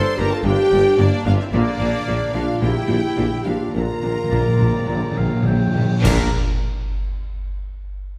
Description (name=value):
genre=cinematic, heroic adventure film score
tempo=103-112 BPM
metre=4/4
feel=straight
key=Bb lydian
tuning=A4 = 440 Hz
part: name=warm symphonic violin section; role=melody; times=0.0-6.3 s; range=D4 to C6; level=-36 LUFS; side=equal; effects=none
part: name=mellow hollow concert flute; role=second line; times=0.0-6.4 s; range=D5 to C6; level=-35 LUFS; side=equal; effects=none
part: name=rich symphonic violin section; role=second line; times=0.0-6.4 s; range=Bb4 to C6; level=-39 LUFS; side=equal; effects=none
part: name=warm clarinet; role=second line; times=0.0-6.3 s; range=Bb3 to Bb4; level=-31 LUFS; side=equal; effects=none
part: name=warm French horn section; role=sustained chords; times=0.0-6.3 s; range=D4 to C5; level=-24 LUFS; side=equal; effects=none
part: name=dark trumpet section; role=stabs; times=0.0-6.3 s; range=Bb3 to Bb4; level=-34 LUFS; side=equal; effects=none
part: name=clear tuba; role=bass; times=0.0-6.3 s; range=G1 to Bb1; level=-28 LUFS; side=equal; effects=none
part: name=clear symphonic viola section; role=accompaniment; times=0.2-6.4 s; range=Bb3 to D4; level=-34 LUFS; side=equal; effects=none
part: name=clear symphonic cello section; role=bass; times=0.2-6.4 s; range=G2 to Bb2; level=-29 LUFS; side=equal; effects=none
part: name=dark symphonic double bass section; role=bass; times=0.2-6.4 s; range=G1 to Bb1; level=-27 LUFS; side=equal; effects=none
part: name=clear trombone section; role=sustained chords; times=0.4-6.3 s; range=D3 to Bb3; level=-39 LUFS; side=equal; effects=none
part: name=cymbal swell, clash cymbals and concert bass drum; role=percussion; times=1.5-7.1 s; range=none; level=-29 LUFS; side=equal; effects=none
part: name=timpani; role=percussion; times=1.5-6.3 s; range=Bb2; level=-25 LUFS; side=equal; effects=none
part: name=clear oboe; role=second line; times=4.3-6.0 s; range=D5 to G5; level=-35 LUFS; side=equal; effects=none
room=wet recital hall reverb, RT60 1.5 s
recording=none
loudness=-19 LUFS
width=mono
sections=0.0-6.0 A section; 6.0-8.2 B section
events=slowing down 0.5-6.0; timpani fill 1.5-6.0; band accent 6.0-6.6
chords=0.0 Gm; 1.5 Bb